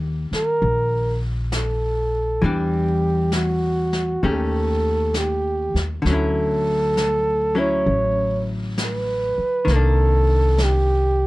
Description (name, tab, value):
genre	jazz ballad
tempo	66 BPM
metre	4/4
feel	swing 66% on 8ths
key	unclear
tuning	A4 = 440 Hz
part	archtop guitar, miked and amplified	accompaniment	0.0-11.3 s	D3 to G4	-26 LUFS	left 2 dB	none
part	upright bass	bass	0.0-11.3 s	A1 to E2	-22 LUFS	equal	none
part	jazz brush drum kit	drums	0.3-11.3 s	brushed snare drum, hi-hat, snare drum	-31 LUFS	left 1 dB	none
part	breathy flugelhorn	melody	0.4-11.3 s	F#4 to C#5	-22 LUFS	right 2 dB	none
room	little or no reverb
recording	none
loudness	-18 LUFS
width	side -19 dB against mid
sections	0.0-11.3 A section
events	none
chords	0.0 Ebmaj7; 2.4 Em9; 4.2 Eb7#11; 6.1 Dmaj9; 9.7 Cm9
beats	0.62 1.52 | 2.42 3.32 4.23 5.15 | 6.06 6.97 7.88 8.78 | 9.68 10.59